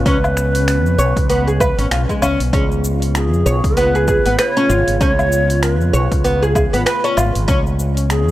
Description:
organic downtempo; 97 BPM; 4/4; swing 58% on 16ths; A4 = 440 Hz
breathy bright low ney; melody; 0.0-8.3 s; G#4 to C#5; -21 LUFS; right 1 dB; analog delay
airy breathy pad; sustained chords; 0.0-8.3 s; C#3 to E#4; -24 LUFS; left 1 dB; chorus, sidechain pumping
oud; arpeggios; 0.0-7.6 s; G#3 to C#5; -18 LUFS; equal; vintage 12-bit sampler grit, analog delay
mellow fretless electric bass; bass; 0.0-8.3 s; G#1 to E#2; -17 LUFS; equal; sidechain pumping
deep house drum kit; drums; 0.1-8.3 s; cabasa, finger snaps, hi-hat, woodblock; -24 LUFS; equal; overdrive
electronic kick drum; drums; 0.1-7.6 s; -20 LUFS; equal; overdrive
bronze singing bowl; texture; 2.5-8.3 s; G#4; -32 LUFS; right 6 dB
small room ambience; dry, gritty hardware recording; -13 LUFS; side -15 dB against mid
0.0-8.3 A section
0.0 C#7
| 0.06 0.68 1.30 1.91 | 2.53 3.15 3.77 4.39 | 5.01 5.62 6.24 6.86 | 7.48 8.10

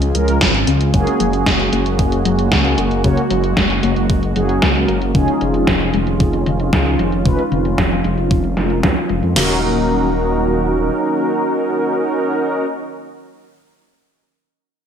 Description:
synthwave; 114 BPM; 4/4; straight; Eb minor; A4 = 440 Hz
warm analog pad; sustained chords; 0.0-12.7 s; Db3 to Ab4; -21 LUFS; equal; chorus, phaser
analog pluck; arpeggios; 0.0-9.6 s; Db3 to Db4; -24 LUFS; left 4 dB
dark detuned saw bass; bass; 0.0-10.9 s; Eb1 to F2; -20 LUFS; equal
gated 80s digital drum machine; drums; 0.0-9.3 s; hi-hat, snare drum; -20 LUFS; equal; gated reverb, gated reverb snare, overdrive, low-pass filter on hats, low-pass filter on snare, low-pass filter on room
mellow synth brass; stabs; 0.1-12.7 s; Ab3 to Db5; -19 LUFS; right 1 dB; chorus, digital delay
gated 80s digital drum machine; drums; 0.4-9.5 s; crash cymbal, kick drum, snare drum; -18 LUFS; equal; gated reverb, gated reverb snare, overdrive
moderate lush hall reverb, RT60 1.6 s; bright 1980s-style digital production; -14 LUFS; side -8 dB against mid
0.0-9.4 A section; 9.4-13.6 B section
filter sweep on drum 0.0-9.4; filter sweep on analog polysynth 0.0-9.4
0.0 Db; 0.9 Gbadd9; 5.1 Dbadd9/F; 9.4 Ebm7
0.41 | 0.94 1.47 1.99 2.52 | 3.04 3.57 4.10 4.62 | 5.15 5.68 6.20 6.73 | 7.25 7.78 8.31 8.83 | 9.36 9.89 10.41 10.94 | 11.46 11.99 12.52

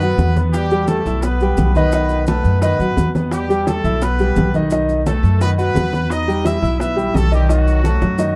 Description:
latin, salsa; 172 BPM; 4/4; straight; E harmonic minor; A4 = 441 Hz
brilliant horn section; melody; 0.0-8.4 s; F#3 to E5; -25 LUFS; equal
clear grand piano; accompaniment; 0.0-8.3 s; D#3 to E6; -22 LUFS; equal
upright bass; bass; 0.0-8.4 s; B1 to F#2; -20 LUFS; equal
bongos; percussion; 0.0-8.3 s; -28 LUFS; equal
congas; percussion; 0.0-8.4 s; -27 LUFS; equal
maracas; percussion; 0.0-8.4 s; -42 LUFS; equal
light reverb; dark, warm production; -17 LUFS; mono
0.0-8.4 A section
drum fill 8.0-8.4
0.0 B5; 0.5 Em; 1.9 B7; 3.3 Em; 4.7 B7; 6.1 Em; 7.5 B7
0.19 | 0.53 0.88 1.23 1.58 | 1.93 2.27 2.62 2.97 | 3.32 3.67 4.02 4.37 | 4.71 5.06 5.41 5.76 | 6.11 6.46 6.81 7.15 | 7.50 7.85 8.20

